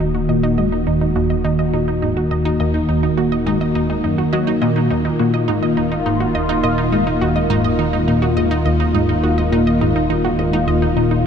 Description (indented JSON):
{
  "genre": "ambient, sequencer-driven space music",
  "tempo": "104 BPM",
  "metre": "4/4",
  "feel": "straight",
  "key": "Eb minor",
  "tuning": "A4 = 440 Hz",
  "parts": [
    { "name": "sweeping resonant pad", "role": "sustained chords", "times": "0.0-11.3 s", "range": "Eb3 to Gb4", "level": "-18 LUFS", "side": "left 1 dB", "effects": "chorus" },
    { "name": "wide unison pluck", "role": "arpeggios", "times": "0.0-11.2 s", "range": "Eb4 to Eb5", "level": "-23 LUFS", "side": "right 3 dB", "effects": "auto-pan, analog delay" },
    { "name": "tight sequenced synth", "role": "riff", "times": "0.0-11.2 s", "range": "Eb2 to Gb3", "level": "-20 LUFS", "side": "equal", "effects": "chorus, analog delay" },
    { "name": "fat analog bass", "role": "bass", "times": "0.0-11.3 s", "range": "Eb1", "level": "-25 LUFS", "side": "equal", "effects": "none" }
  ],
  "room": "moderate huge ambient reverb, RT60 7.5 s",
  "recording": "none",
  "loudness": "-15 LUFS",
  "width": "side -7 dB against mid",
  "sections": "0.0-11.3 A section",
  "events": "none",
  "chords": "0.0 Ebm",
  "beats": "| 0.29 0.87 1.45 2.02 | 2.60 3.18 3.75 4.33 | 4.91 5.48 6.06 6.64 | 7.21 7.79 8.37 8.95 | 9.52 10.10 10.68 11.25"
}